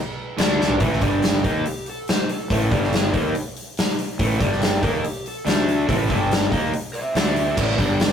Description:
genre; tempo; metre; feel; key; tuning
blues rock power trio and southern rock; 142 BPM; 4/4; straight; A minor; A4 = 438 Hz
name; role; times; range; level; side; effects
distorted electric guitar; riff; 0.4-8.1 s; G2 to D#4; -22 LUFS; equal; distortion
fuzz fingered electric bass; bass; 0.4-8.1 s; G1 to D#2; -25 LUFS; equal; overdrive
huge arena drum kit; drums; 0.4-8.1 s; crash cymbal, hi-hat, kick drum, snare drum, toms; -22 LUFS; equal; none
lead guitar through a small cranked amp; melody; 1.5-8.1 s; G4 to E5; -29 LUFS; right 1 dB; overdrive
room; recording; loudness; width
light reverb; rough rehearsal-room recording, tube saturation; -19 LUFS; side -8 dB against mid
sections
0.8-8.1 A section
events
drum fill 0.6; lead electric guitar solo 0.8-8.1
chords
0.4 D5; 0.8 A5; 1.0 G5; 1.4 A5; 2.7 G5; 3.1 A5; 4.4 G5; 4.8 D#; 5.5 D5; 5.9 A5; 6.1 G5; 6.5 C7#9/D#; 7.1 D5; 7.6 A5

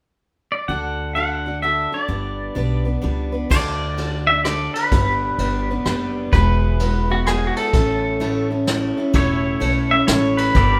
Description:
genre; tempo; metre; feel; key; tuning
honky-tonk and classic country; 128 BPM; 3/4; swing 64% on 8ths; D major; A4 = 440 Hz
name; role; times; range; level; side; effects
pedal steel guitar; melody; 0.5-10.8 s; F#4 to F#5; -24 LUFS; equal; none
picked steel-string acoustic guitar; accompaniment; 0.7-10.8 s; E2 to B4; -26 LUFS; equal; none
upright bass; bass; 0.7-10.8 s; E1 to D2; -25 LUFS; equal; none
vintage brush drum kit; drums; 3.5-10.7 s; crash cymbal, kick drum, ride cymbal, rim click, snare drum; -25 LUFS; equal; none
pedal steel guitar; sustained chords; 9.2-10.8 s; E4 to D5; -31 LUFS; equal; none
room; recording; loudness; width
moderate large studio reverb, RT60 0.9 s; none; -20 LUFS; mono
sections
0.7-3.5 A section; 3.5-10.8 B section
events
none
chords
0.0 N.C.; 0.7 D; 2.1 G; 3.5 D; 4.9 G; 6.3 Eadd9; 7.7 A

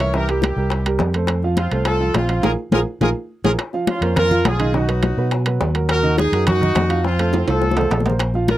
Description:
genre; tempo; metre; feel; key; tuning
latin, salsa; 208 BPM; 4/4; straight; unclear; A4 = 440 Hz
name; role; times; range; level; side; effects
bright horn section; melody; 0.0-8.6 s; C4 to Db5; -21 LUFS; equal; none
warm grand piano; accompaniment; 0.0-8.6 s; Eb3 to F5; -23 LUFS; right 4 dB; none
fingered electric bass; bass; 0.0-8.6 s; Bb1 to B2; -20 LUFS; equal; none
bongos; percussion; 0.0-8.6 s; none; -26 LUFS; left 6 dB; none
timbales; percussion; 0.0-8.6 s; none; -25 LUFS; right 5 dB; none
congas; percussion; 0.1-8.6 s; none; -24 LUFS; left 2 dB; none
room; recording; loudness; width
little or no reverb; dry, close 1970s-style studio recording; -16 LUFS; side -14 dB against mid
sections
0.0-3.6 A section; 3.6-8.6 A section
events
drum fill 2.4-3.6, 7.3-8.2; band accent 2.4-3.6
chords
0.1 C7; 1.3 F; 2.4 Bb5; 3.6 Bbmadd9; 4.7 B; 5.9 Ebm; 7.0 F

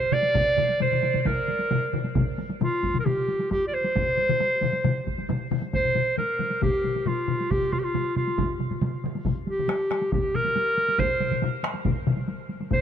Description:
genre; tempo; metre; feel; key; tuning
japanese traditional, taiko drum ensemble; 136 BPM; 4/4; straight; C suspended pentatonic; A4 = 439 Hz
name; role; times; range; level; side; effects
bright clarinet; melody; 0.0-12.8 s; F4 to D5; -25 LUFS; right 1 dB; none
taiko ensemble; percussion; 0.1-12.8 s; none; -30 LUFS; left 6 dB; none
taiko ensemble; percussion; 0.1-12.2 s; none; -30 LUFS; right 3 dB; none
taiko ensemble; percussion; 0.2-12.8 s; none; -33 LUFS; equal; none
solo taiko drums; percussion; 0.3-12.8 s; none; -31 LUFS; right 1 dB; none
room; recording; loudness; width
moderate huge ambient reverb, RT60 5.2 s; none; -22 LUFS; side -9 dB against mid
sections
0.0-5.7 A section; 5.7-12.8 B section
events
speeding up 0.0-12.8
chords
none

